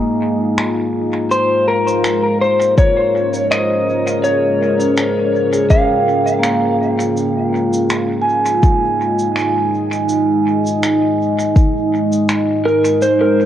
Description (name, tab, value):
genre	ambient dub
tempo	82 BPM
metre	4/4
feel	swing 54% on 16ths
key	F minor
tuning	A4 = 443 Hz
part	deep dark ambient pad	sustained chords	0.0-13.5 s	Ab3 to F5	-17 LUFS	equal	chorus, built-in reverb, cassette tape
part	vibraphone with soft mallets	arpeggios	0.0-13.0 s	Bb3 to Ab5	-20 LUFS	right 1 dB	low-pass filter, cassette tape, analog delay
part	finger snaps and cabasa	drums	0.6-13.2 s	none	-25 LUFS	equal	cassette tape, dub echo
part	electric slide guitar	melody	1.3-6.8, 12.7-13.5 s	Bb4 to F5	-16 LUFS	left 1 dB	cassette tape, dub echo
part	electronic kick drum	drums	2.8-11.7 s	none	-12 LUFS	equal	cassette tape
room	moderate spring reverb, RT60 1.6 s, studio reverb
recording	home recording on cassette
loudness	-13 LUFS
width	side -11 dB against mid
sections	0.0-13.0 A section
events	fade-in on ambient pad 0.0-13.0; filter sweep on vibraphone 0.0-13.0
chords	0.0 Fm7; 1.3 Bbm7; 7.2 Fm7